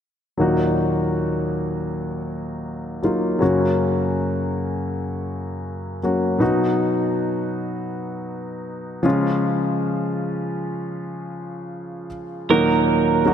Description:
pop; 80 BPM; 4/4; straight; Eb minor; A4 = 439 Hz
clear concert grand piano; accompaniment; 0.4-13.3 s; Eb2 to Gb4; -20 LUFS; left 1 dB
twelve-string electric guitar; melody; 12.5-13.3 s; Bb4; -19 LUFS; right 10 dB; tape echo
moderate lush hall reverb, RT60 2.6 s; -20 LUFS; side -8 dB against mid
0.4-12.5 A section
0.4 Ebm; 3.4 Gb; 6.4 B; 9.1 Db; 12.5 Ebm

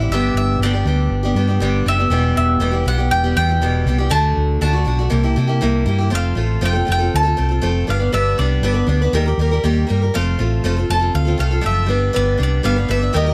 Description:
folk rock and heartland rock; 120 BPM; 4/4; straight; G major; A4 = 438 Hz
bowl-back mandolin; melody; 0.0-13.3 s; D5 to A5; -24 LUFS; equal
picked acoustic archtop guitar; accompaniment; 0.0-13.3 s; E2 to B4; -22 LUFS; equal
hollow-body short-scale fingered electric bass; bass; 0.0-13.3 s; E1 to C3; -20 LUFS; equal
little or no reverb; -17 LUFS; mono
0.0-6.1 A section; 6.1-13.3 B section
0.1 G; 2.1 Em; 4.1 D; 5.1 C7; 6.1 F; 7.9 G; 9.1 Eb; 10.1 F; 11.9 G

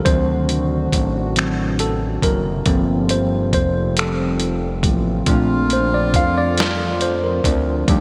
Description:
slow six-eight R&B; 46 BPM (dotted quarters); 6/8; straight; Bb major; A4 = 440 Hz
mellow tine electric piano; accompaniment; 0.0-8.0 s; Eb3 to F5; -22 LUFS; equal
hollow soft pad; sustained chords; 0.0-8.0 s; C3 to F#4; -29 LUFS; equal; chorus
fat analog bass; bass; 0.1-8.0 s; F1 to F2; -25 LUFS; equal
dusty soul sampler-style drum kit; drums; 0.1-8.0 s; finger snaps, hi-hat, kick drum, snare drum; -22 LUFS; equal; gated reverb
warm horn section; stabs; 5.3-8.0 s; D3 to G4; -27 LUFS; equal
moderate lush hall reverb, RT60 3.1 s; bright 1980s-style digital production; -19 LUFS; mono
0.0-8.0 A section
tine electric piano solo 0.0-8.0
0.1 D7b9; 2.7 Gm11; 5.3 Bbmaj7

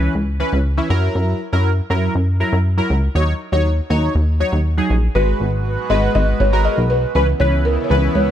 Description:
pop; 120 BPM; 4/4; straight; G# minor; A4 = 440 Hz
warm analog keys; accompaniment; 0.0-8.3 s; E3 to C#5; -21 LUFS; equal; chorus, phaser
plucky analog bass; bass; 0.0-8.3 s; G#1 to F#2; -17 LUFS; equal
buzzing marimba with soft mallets; melody; 5.2-8.3 s; A#4 to D#5; -20 LUFS; equal
chorused pulse-width pad; sustained chords; 5.3-8.3 s; C#3 to B4; -25 LUFS; right 1 dB
little or no reverb; -15 LUFS; side -10 dB against mid
0.0-5.2 A section; 5.2-8.3 B section
0.0 C#m7; 0.9 F#7; 3.2 D#m7; 5.2 G#m7; 7.2 C#m7

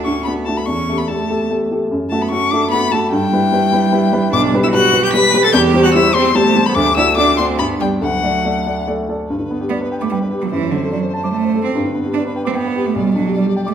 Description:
quick classical-period movement for piano trio; 147 BPM; 3/4; straight; G major from 4.3 s; A4 = 440 Hz
rich violin; melody; 0.0-13.7 s; B4 to B6; -19 LUFS; left 7 dB
warm cello; second line; 0.0-13.7 s; D3 to B4; -19 LUFS; right 5 dB
dark grand piano; accompaniment; 0.0-13.7 s; B1 to D6; -17 LUFS; left 1 dB
wet recital hall reverb, RT60 1.6 s; -13 LUFS; side -9 dB against mid
0.0-9.3 A section; 9.3-13.7 B section
0.0 D; 0.7 A5/E; 1.9 F#madd11; 3.1 Em/G; 4.3 G/B; 5.6 C/E; 6.8 D; 7.6 G; 8.0 D; 9.3 G; 10.5 D7/F#; 11.7 G; 13.0 G/B

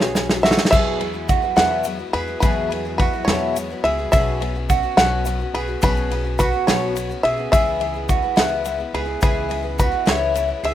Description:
indie folk with a building arrangement; 71 BPM (dotted quarters); 6/8; straight; E major; A4 = 440 Hz
bluegrass banjo; melody; 0.0-10.7 s; B4 to F#5; -22 LUFS; equal; digital delay
picked twelve-string acoustic guitar; accompaniment; 0.0-10.7 s; E2 to F#4; -26 LUFS; left 6 dB
mandolin; arpeggios; 0.0-10.7 s; F#4 to G#4; -26 LUFS; right 10 dB; digital delay
upright bass; bass; 0.0-10.7 s; B1 to E2; -28 LUFS; equal
loose indie drum kit; drums; 0.0-10.7 s; crash cymbal, kick drum, ride cymbal, snare drum; -22 LUFS; equal
egg shaker; percussion; 0.2-10.5 s; -37 LUFS; left 3 dB
little or no reverb; rough home demo mix; -17 LUFS; side -12 dB against mid
0.7-10.7 A section
drum fill 0.0-0.7
0.0 Bsus2; 0.7 Eadd9; 4.1 Bsus2; 7.5 C#m7

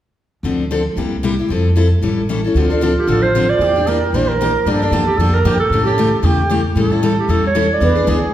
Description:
acoustic string swing (jazz manouche); 228 BPM; 4/4; swing 56% on 8ths; D minor; A4 = 444 Hz
picked steel-string acoustic guitar; accompaniment; 0.4-8.2 s; C3 to A4; -18 LUFS; left 3 dB
upright bass; bass; 0.4-8.3 s; A1 to A2; -18 LUFS; equal
mellow bansuri; second line; 2.5-8.3 s; F4 to C5; -20 LUFS; right 3 dB
breathy clarinet; melody; 3.0-8.2 s; G4 to D5; -18 LUFS; right 3 dB
wet recital hall reverb, RT60 1.4 s; heard from further back in the room; -13 LUFS; side -12 dB against mid
0.4-2.6 A section; 2.6-8.3 B section
0.4 Dm7; 1.0 C7; 1.5 Fmaj7; 2.0 A7; 2.6 Dm7; 3.6 Em7b5; 4.7 Gm9; 5.7 A7; 7.8 E7

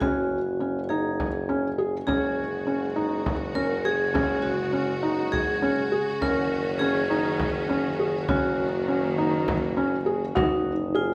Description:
contemporary instrumental, chamber music in an uneven meter; 203 BPM (eighths); 7/8; straight; F# major; A4 = 440 Hz
vibraphone with medium mallets; second line; 0.0-11.1 s; D#4 to A#4; -31 LUFS; equal
felt-muted upright piano; arpeggios; 0.0-11.1 s; C#4 to G#4; -29 LUFS; equal
clear tuba; bass; 0.0-11.1 s; F#1; -34 LUFS; equal
frame drum; percussion; 0.0-10.6 s; -34 LUFS; equal
clear studio string section; sustained chords; 2.1-10.3 s; C#3 to F#4; -36 LUFS; equal
wet recital hall reverb, RT60 1.5 s; -26 LUFS; mono
0.0-10.4 A section
0.0 F#sus2; 8.3 F#6; 10.4 D#madd11/F#

